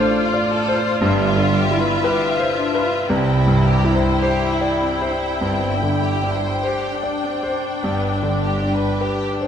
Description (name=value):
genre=classical, romantic movement for piano and orchestra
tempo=49-58 BPM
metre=4/4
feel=rubato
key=unclear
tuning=A4 = 440 Hz
part: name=clear concert grand piano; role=melody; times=0.0-9.5 s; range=C2 to D5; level=-20 LUFS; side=left 1 dB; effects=none
part: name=rich studio violin section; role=melody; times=0.0-9.5 s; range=D5 to G5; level=-28 LUFS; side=left 2 dB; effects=none
part: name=clear studio violin section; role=second line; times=0.0-9.5 s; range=B3 to C5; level=-26 LUFS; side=left 3 dB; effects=none
part: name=bright studio viola section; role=accompaniment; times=0.0-9.5 s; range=D4 to F4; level=-25 LUFS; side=left 2 dB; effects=none
part: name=clear studio double bass section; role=bass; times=1.0-8.8 s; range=G1 to C2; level=-26 LUFS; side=right 3 dB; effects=none
part: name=rich studio cello section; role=bass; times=1.0-8.8 s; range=G2 to C3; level=-24 LUFS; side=right 2 dB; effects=none
room=moderate concert hall reverb, RT60 1.9 s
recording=close, detailed microphones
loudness=-17 LUFS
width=side -8 dB against mid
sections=0.0-9.5 A section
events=none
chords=0.0 Dm7/A; 1.0 G6; 3.1 C; 5.4 Gsus4; 7.8 G